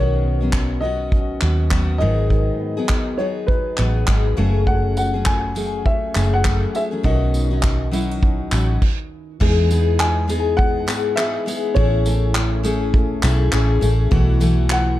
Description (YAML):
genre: acoustic pop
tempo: 101 BPM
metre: 4/4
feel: swing 60% on 16ths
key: E major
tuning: A4 = 444 Hz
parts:
  - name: dark upright piano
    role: melody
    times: 0.0-15.0 s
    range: B4 to G#5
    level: -26 LUFS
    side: left 1 dB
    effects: ping-pong delay
  - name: picked steel-string acoustic guitar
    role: accompaniment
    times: 0.0-15.0 s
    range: F#2 to G#4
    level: -23 LUFS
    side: left 4 dB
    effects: none
  - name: flamenco guitar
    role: arpeggios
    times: 0.0-15.0 s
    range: D#3 to G#4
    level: -30 LUFS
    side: right 6 dB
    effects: ping-pong delay
  - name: vintage muted fingered electric bass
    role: bass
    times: 0.0-15.0 s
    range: F#1 to G#2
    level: -19 LUFS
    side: equal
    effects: none
  - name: unplugged drum kit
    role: drums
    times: 0.5-14.9 s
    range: crash cymbal, handclaps, kick drum, tambourine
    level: -21 LUFS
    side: equal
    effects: none
room: light reverb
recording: dark, warm production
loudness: -16 LUFS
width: side -14 dB against mid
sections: 0.0-9.4 A section; 9.4-15.0 B section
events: stop 8.8-9.4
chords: 0.0 Badd9; 2.0 G#m7; 4.4 F#madd9; 7.0 Badd9; 9.4 Emaj7; 11.8 Amaj7; 14.1 B7sus4